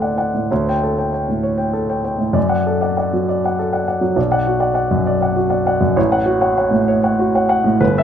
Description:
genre	classical, romantic character piece for solo piano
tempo	66 BPM (dotted quarters)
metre	6/8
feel	uneven beats, rubato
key	D major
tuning	A4 = 440 Hz
part	warm baby grand piano	solo	0.0-8.0 s	G1 to G5	-15 LUFS	equal	none
room	light reverb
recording	close, detailed microphones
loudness	-15 LUFS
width	side -9 dB against mid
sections	0.0-8.0 A section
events	none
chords	0.0 D; 0.5 A7/D; 2.4 D/F#; 4.2 Bm; 6.0 F#m/A

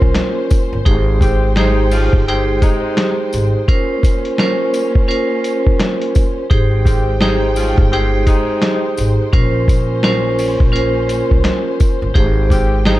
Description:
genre	hip hop, boom-bap hip-hop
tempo	85 BPM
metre	4/4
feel	swing 60% on 16ths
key	Bb dorian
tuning	A4 = 440 Hz
part	vibraphone with hard mallets	accompaniment	0.0-13.0 s	Db4 to C5	-18 LUFS	right 1 dB	cassette tape, high-pass filter, low-pass filter
part	rich studio string section	sustained chords	0.0-13.0 s	Ab3 to G5	-26 LUFS	equal	high-pass filter, low-pass filter
part	upright bass	bass	0.0-13.0 s	G1 to C2	-17 LUFS	equal	none
part	lo-fi sampler-style drum kit	drums	0.0-13.0 s	hi-hat, kick drum, snare drum	-15 LUFS	equal	none
part	tambourine	percussion	0.5-12.7 s	none	-36 LUFS	left 5 dB	none
part	clear saxophone section	stabs	1.2-13.0 s	C3 to G4	-25 LUFS	left 3 dB	high-pass filter, low-pass filter, analog delay
room	light reverb, small room ambience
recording	dark, warm production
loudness	-12 LUFS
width	side -16 dB against mid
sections	0.0-13.0 A section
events	none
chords	0.0 Bbmadd9; 0.9 Abmaj7; 3.7 Bbmadd9; 6.5 Abmaj7; 9.3 Bbmadd9; 12.2 Abmaj7

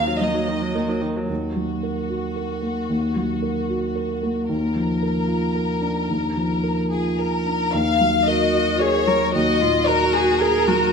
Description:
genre	neoclassical piano and strings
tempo	112 BPM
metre	3/4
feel	rubato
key	Eb minor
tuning	A4 = 438 Hz
part	warm chamber violin section	melody	0.0-10.9 s	Gb4 to F5	-23 LUFS	left 4 dB	none
part	felt-muted upright piano	accompaniment	0.0-10.9 s	Eb2 to Bb4	-22 LUFS	right 1 dB	none
part	rich viola	accompaniment	0.0-1.3, 8.3-10.9 s	Eb3 to Bb4	-23 LUFS	right 2 dB	none
room	wet recital hall reverb, RT60 1.7 s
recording	recorded in a church or concert hall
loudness	-19 LUFS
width	side -5 dB against mid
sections	0.0-1.3 A section; 1.3-7.7 B section; 7.7-10.9 C section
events	none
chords	0.0 Ebm; 4.5 Bb/Eb; 7.7 Ebm

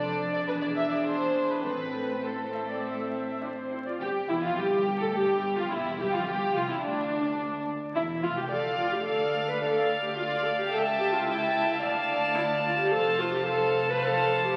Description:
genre	quick classical-period movement for string orchestra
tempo	108 BPM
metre	4/4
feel	rubato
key	A minor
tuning	A4 = 441 Hz
part	warm chamber violin section	melody	0.0-14.6 s	C4 to A5	-33 LUFS	equal	none
part	warm studio violin section	second line	0.0-14.6 s	D4 to G5	-32 LUFS	equal	none
part	warm chamber viola section	accompaniment	0.0-14.6 s	D4 to E5	-33 LUFS	equal	none
part	dark chamber cello section	bass	0.0-14.6 s	C#2 to A2	-43 LUFS	equal	none
part	warm chamber double bass section	bass	0.0-14.6 s	E1 to D2	-43 LUFS	equal	none
room	wet scoring stage reverb, RT60 1.9 s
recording	very old 78 rpm record, vinyl crackle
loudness	-28 LUFS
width	mono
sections	0.0-4.0 A section; 4.0-14.6 B section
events	none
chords	0.5 E7; 1.6 Am; 4.0 Fmaj9/E; 6.3 G5; 7.4 Em; 8.5 Dm; 10.7 A7/C#; 11.8 Dm; 12.9 F

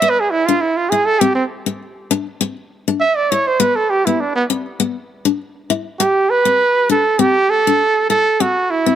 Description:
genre	highlife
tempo	100 BPM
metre	4/4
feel	swing 54% on 16ths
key	A minor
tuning	A4 = 435 Hz
part	warm trumpet	melody	0.0-9.0 s	B3 to E5	-14 LUFS	right 3 dB	none
part	picked steel-string acoustic guitar	accompaniment	0.0-9.0 s	B3 to E4	-18 LUFS	left 7 dB	none
room	moderate spring reverb, RT60 2.5 s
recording	none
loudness	-14 LUFS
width	side -10 dB against mid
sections	0.0-6.0 A section; 6.0-9.0 B section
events	trumpet solo 0.0-6.0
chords	0.0 E5; 1.2 C; 3.6 N.C.; 4.8 E5; 6.0 Am

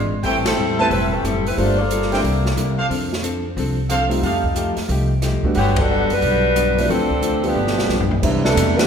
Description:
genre	jazz, big band swing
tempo	180 BPM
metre	4/4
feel	swing 64% on 8ths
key	G major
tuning	A4 = 441 Hz
part	dark saxophone section	melody	0.0-2.8, 5.6-8.9 s	D3 to D5	-20 LUFS	left 1 dB	none
part	archtop guitar, miked and amplified	accompaniment	0.0-8.8 s	G2 to A4	-25 LUFS	left 3 dB	none
part	upright bass	bass	0.0-8.9 s	E1 to C3	-22 LUFS	equal	none
part	clear trumpet section	stabs	0.2-6.1 s	D4 to A5	-25 LUFS	right 2 dB	none
part	open jazz drum kit	drums	0.2-8.8 s	crash cymbal, hi-hat, kick drum, ride cymbal, rim click, snare drum, toms	-25 LUFS	equal	none
part	clear concert grand piano	accompaniment	0.8-8.9 s	F3 to F#4	-25 LUFS	right 1 dB	none
part	dark trombone section	second line	7.4-8.9 s	B2 to B3	-23 LUFS	right 4 dB	none
room	wet recital hall reverb, RT60 1.7 s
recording	recorded in a church or concert hall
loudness	-16 LUFS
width	side -7 dB against mid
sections	0.0-8.2 A section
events	band accent 0.4, 5.7; drum fill 7.6-8.2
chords	0.2 Am7; 1.6 Gm9; 2.2 C7; 2.9 F6; 4.2 F9; 5.6 Gmaj7; 6.9 Dm7; 7.6 G7; 8.2 Cmaj9

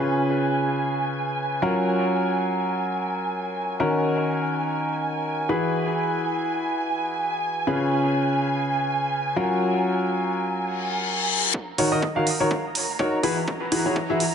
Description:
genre	piano house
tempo	124 BPM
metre	4/4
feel	swing 56% on 16ths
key	Eb minor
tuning	A4 = 438 Hz
part	muted studio violin section	sustained chords	0.0-14.3 s	Ab5 to Bb5	-28 LUFS	right 2 dB	sidechain pumping, low-pass filter
part	clear concert grand piano	riff	0.0-14.2 s	Db3 to F5	-23 LUFS	left 1 dB	sidechain pumping, low-pass filter, dub echo
part	reverse cymbal and riser	sound effects	10.8-14.3 s	none	-27 LUFS	left 6 dB	none
part	electronic kick drum	drums	11.5-14.1 s	none	-31 LUFS	right 1 dB	overdrive, high-pass filter on kick, high-pass filter on room
part	electronic hi-hat	drums	11.8-14.3 s	none	-27 LUFS	right 3 dB	overdrive
room	moderate spring reverb, RT60 2.0 s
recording	echo-heavy mix, nothing above 10.8 kHz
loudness	-22 LUFS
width	side -7 dB against mid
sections	0.0-11.5 A section; 11.5-14.3 B section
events	reverse cymbal 10.8-11.5; build-up 11.5-14.3; riser 11.5-14.3; filter sweep on violin section 11.5-14.3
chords	0.0 Db7; 1.6 Gbmaj7; 3.8 Ebm7; 5.5 Eadd9; 7.7 Db7; 9.4 Gbmaj7; 11.5 Ebm7; 13.2 Eadd9

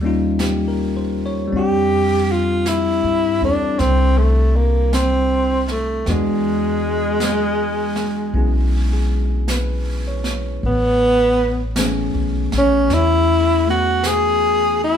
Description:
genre	jazz ballad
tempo	53 BPM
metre	4/4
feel	swing 68% on 8ths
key	A major from 10.6 s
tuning	A4 = 441 Hz
part	bell-like tine electric piano	accompaniment	0.0-15.0 s	E3 to Db5	-23 LUFS	left 2 dB	none
part	upright bass	bass	0.0-15.0 s	A1 to G2	-21 LUFS	equal	none
part	jazz brush drum kit	drums	0.4-15.0 s	brushed snare drum, hi-hat, snare drum	-29 LUFS	right 1 dB	none
part	breathy tenor saxophone	melody	1.6-15.0 s	G#3 to G#4	-17 LUFS	equal	none
room	wet large studio reverb, RT60 0.9 s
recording	band playing live in one room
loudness	-16 LUFS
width	side -8 dB against mid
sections	0.0-10.6 A section; 10.6-15.0 B section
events	none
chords	0.0 Eb9; 1.5 F69; 6.1 E9; 10.6 Amaj9

